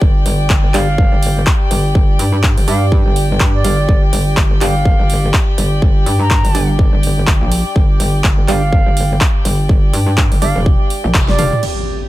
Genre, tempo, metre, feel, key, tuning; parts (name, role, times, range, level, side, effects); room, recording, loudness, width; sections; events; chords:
bass house; 124 BPM; 4/4; swing 58% on 16ths; A4 = 440 Hz
percussive organ stab; stabs; 0.0-11.5 s; G3 to F5; -23 LUFS; right 3 dB; chorus, phaser, sidechain pumping, digital delay
metallic wobble bass; bass; 0.0-11.5 s; F1 to G2; -16 LUFS; equal; chorus, overdrive, sidechain pumping
electronic kick drum; drums; 0.0-11.3 s; -13 LUFS; equal
warm chamber string section; texture; 0.0-12.1 s; G4 to G5; -24 LUFS; left 2 dB; sidechain pumping
big-room dance drum kit; drums; 0.3-11.7 s; crash cymbal, handclaps, hi-hat, snare drum, toms; -20 LUFS; equal
reedy silver concert flute; melody; 0.7-11.6 s; D5 to Bb5; -22 LUFS; right 2 dB; digital delay
impact; sound effects; 11.6-12.1 s; -22 LUFS; equal
little or no reverb; -11 LUFS; side -16 dB against mid
0.0-11.6 A section
filter sweep on synth stab 0.0-11.6; band accent 11.1; drum fill 11.3-11.6; impact 11.6-12.1
0.0 G5